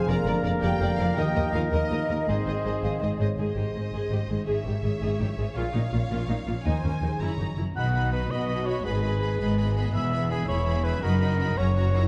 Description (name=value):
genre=cinematic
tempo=110 BPM (dotted quarters)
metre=6/8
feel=straight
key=Ab major, B major from 7.8 s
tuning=A4 = 440 Hz
part: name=clear symphonic violin section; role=second line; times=0.0-12.1 s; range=F#4 to Bb5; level=-41 LUFS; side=equal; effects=none
part: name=mellow hollow concert flute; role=second line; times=0.0-3.4 s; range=Db5 to F5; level=-37 LUFS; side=equal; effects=none
part: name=warm cor anglais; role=second line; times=0.0-3.2, 7.8-12.1 s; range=G#4 to F#5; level=-34 LUFS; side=equal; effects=none
part: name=bright trombone section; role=sustained chords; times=0.0-3.2 s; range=D3 to C4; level=-36 LUFS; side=equal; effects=none
part: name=dark French horn section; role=sustained chords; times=0.0-3.2 s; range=Ab3 to Bb4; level=-36 LUFS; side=equal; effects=none
part: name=concert harp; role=arpeggios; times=0.0-12.1 s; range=E2 to C6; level=-36 LUFS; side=equal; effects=none
part: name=clear trumpet section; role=stabs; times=0.0-3.2 s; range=Eb5 to F5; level=-37 LUFS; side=equal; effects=none
part: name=rich symphonic violin section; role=melody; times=0.1-12.1 s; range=D5 to B5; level=-41 LUFS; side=equal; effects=none
part: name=rich symphonic viola section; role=accompaniment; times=0.1-12.0 s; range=B3 to C5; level=-38 LUFS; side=equal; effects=none
part: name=rich symphonic double bass section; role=bass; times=0.1-12.0 s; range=E1 to Eb2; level=-32 LUFS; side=equal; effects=none
part: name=warm symphonic cello section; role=bass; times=0.1-12.0 s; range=Eb2 to B2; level=-31 LUFS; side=equal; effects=none
room=moderate scoring stage reverb, RT60 1.8 s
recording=dark, warm production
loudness=-26 LUFS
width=mono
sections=0.0-3.4 A section; 3.4-7.8 B section; 7.8-12.1 C section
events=none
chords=0.1 Bb/F; 1.2 Eb; 2.3 Ab; 4.5 Dbm/Ab; 5.6 Bbm; 6.6 Ab/Eb; 7.2 Gb7; 7.8 B; 8.8 G#m; 9.9 E; 11.0 B/F#; 11.6 F#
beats=| 0.08 0.62 | 1.17 1.72 | 2.27 2.83 | 3.38 3.93 | 4.47 5.02 | 5.56 6.10 | 6.65 7.20 | 7.76 8.30 | 8.85 9.39 | 9.94 10.48 | 11.02 11.56